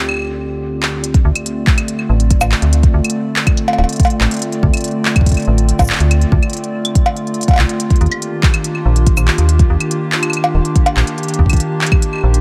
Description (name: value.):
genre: IDM.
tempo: 142 BPM.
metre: 4/4.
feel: straight.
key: D phrygian.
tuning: A4 = 440 Hz.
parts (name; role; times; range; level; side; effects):
warbly tape-like pad; sustained chords; 0.0-12.4 s; D2 to D5; -22 LUFS; equal; chorus, built-in reverb.
flickering grainy texture; texture; 0.0-1.0 s; D4 to D5; -42 LUFS; equal; none.
organic electronic drum kit; drums; 0.1-12.4 s; cabasa, claves, cowbell, handclaps, hi-hat; -21 LUFS; equal; none.
electronic kick drum; drums; 1.1-12.0 s; none; -14 LUFS; equal; none.
metallic FM bass; bass; 1.2-12.4 s; D1 to Eb2; -15 LUFS; equal; tube saturation.
room: light reverb.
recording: none.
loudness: -14 LUFS.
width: mono.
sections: 0.0-1.0 A section; 1.0-12.4 B section.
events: none.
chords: 0.0 Dm7; 7.8 Ebmaj7.